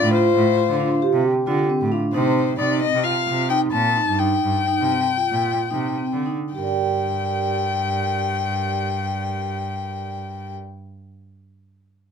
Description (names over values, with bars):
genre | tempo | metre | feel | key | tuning
contemporary instrumental, chamber music in an uneven meter | 210-270 BPM (eighths) | 9/8 | straight | G minor | A4 = 436 Hz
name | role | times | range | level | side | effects
dark violin | melody | 0.0-10.5 s | C5 to A5 | -22 LUFS | left 8 dB | none
mellow French horn | second line | 0.0-2.1 s | F4 to G4 | -22 LUFS | left 3 dB | none
vibraphone with medium mallets | arpeggios | 0.0-10.7 s | C4 to G5 | -25 LUFS | right 5 dB | none
rich cello | bass | 0.0-10.6 s | G2 to D3 | -25 LUFS | right 3 dB | none
room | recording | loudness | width
little or no reverb | close, detailed microphones | -19 LUFS | side -6 dB against mid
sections
0.0-6.5 A section; 6.5-11.6 B section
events
slowing down 2.6-6.5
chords
0.0 Dm7; 2.1 Cm; 6.5 Gm